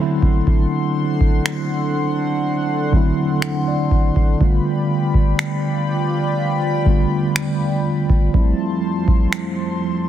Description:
contemporary R&B; 61 BPM; 4/4; straight; A4 = 442 Hz
mellow tine electric piano; accompaniment; 0.0-10.1 s; D3 to F#5; -20 LUFS; right 1 dB; medium stereo tremolo
chorused pulse-width pad; sustained chords; 0.0-10.1 s; F3 to C6; -24 LUFS; equal
booming analog drum machine; drums; 0.2-9.6 s; finger snaps, kick drum; -16 LUFS; equal; soft clipping on snare
little or no reverb; dense, heavily limited modern master; -16 LUFS; side -11 dB against mid
0.0-10.1 A section
tine electric piano fill 2.9-4.4
0.0 D7; 4.4 G7; 8.3 Fmaj7

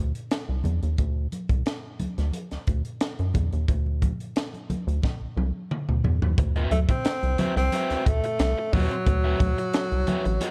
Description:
funk; 89 BPM; 4/4; straight; D mixolydian; A4 = 440 Hz
rubbery square bass; bass; 0.0-10.4 s; A1 to F#2; -27 LUFS; equal
crisp fusion drum kit; drums; 0.2-10.5 s; hi-hat, kick drum, snare drum, toms; -30 LUFS; equal
congas; percussion; 0.3-10.5 s; -35 LUFS; equal
crunchy overdriven guitar; accompaniment; 6.4-10.5 s; C4 to E5; -36 LUFS; equal
breathy tenor saxophone; melody; 6.7-10.5 s; F#3 to C4; -29 LUFS; equal
small room ambience; dark, warm production; -26 LUFS; mono
0.0-6.4 A section; 6.4-10.5 B section
drum fill 5.0-6.4
0.0 D7(no3); 6.4 D13

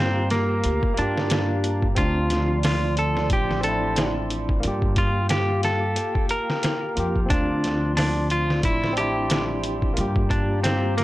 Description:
trip hop; 90 BPM; 4/4; swing 57% on 16ths; D minor; A4 = 439 Hz
semi-hollow electric guitar; melody; 0.0-11.0 s; Bb3 to Bb4; -26 LUFS; equal; tape echo
barky tine electric piano; accompaniment; 0.0-11.0 s; Bb3 to G4; -29 LUFS; equal; harmonic tremolo, tape echo
warbly tape-like pad; sustained chords; 0.0-11.0 s; F3 to C6; -31 LUFS; equal; chorus, built-in reverb, vintage 12-bit sampler grit
upright bass; bass; 0.0-11.0 s; A1 to G2; -26 LUFS; equal
trip hop sampler-style drum kit; drums; 0.3-11.0 s; hi-hat, kick drum, snare drum; -25 LUFS; equal; small room ambience
backwards swelling texture; texture; 9.2-11.0 s; G3 to G4; -38 LUFS; right 3 dB
little or no reverb; dry, gritty hardware recording; -20 LUFS; side -16 dB against mid
0.0-11.0 A section
0.0 Gm7; 2.0 Dm7; 4.6 Gm7; 7.3 Dm7; 10.0 Gm7

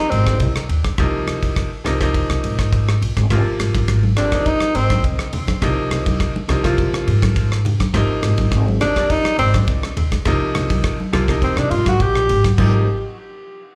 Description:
electric jazz fusion; 104 BPM; 4/4; straight; Ab lydian; A4 = 440 Hz
breathy tenor saxophone; melody; 0.0-0.4, 4.2-5.0, 8.8-12.5 s; C4 to G4; -23 LUFS; equal; slapback echo, tape echo
bright grand piano; accompaniment; 0.0-12.9 s; C3 to F4; -26 LUFS; equal; slapback echo
upright bass; bass; 0.1-12.9 s; Ab1 to Ab2; -21 LUFS; equal
damped 70s drum kit; drums; 0.1-12.7 s; crash cymbal, kick drum, ride cymbal, rim click; -25 LUFS; equal
congas; percussion; 3.3-12.9 s; -29 LUFS; equal
small room ambience; live gig heard through the venue's PA, club reverb; -18 LUFS; mono
0.0-12.6 A section; 12.6-13.8 B section
tenor saxophone solo 0.0-12.6
0.0 Abadd9

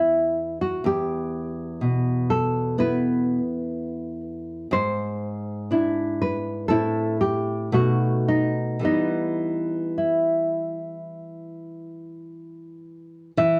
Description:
romantic duo for nylon-string guitar and classical guitar; 51-63 BPM; 4/4; rubato; E minor; A4 = 440 Hz
nylon-string guitar; melody; 0.0-13.6 s; D#4 to E5; -27 LUFS; equal
nylon-string guitar; accompaniment; 0.0-13.6 s; E2 to E4; -28 LUFS; equal
moderate studio reverb, RT60 0.7 s; dark, warm production; -24 LUFS; mono
0.0-13.4 A section
0.0 E5; 4.7 E7/G#; 6.7 Am; 7.7 B7; 8.9 Em

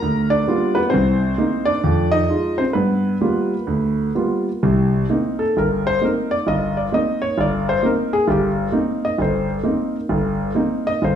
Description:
solo jazz; 131 BPM; 4/4; swing 65% on 8ths, rubato; C minor; A4 = 439 Hz
warm concert grand piano; solo; 0.0-11.2 s; G1 to A#5; -17 LUFS; equal
wet large studio reverb, RT60 1.0 s; heard from further back in the room; -17 LUFS; side -9 dB against mid
0.0-4.6 A section; 4.6-11.2 B section
grand piano solo 4.6-11.2
0.0 G7#9; 0.9 Cm7; 1.8 Fm7; 2.8 G7#9; 4.6 Cm7

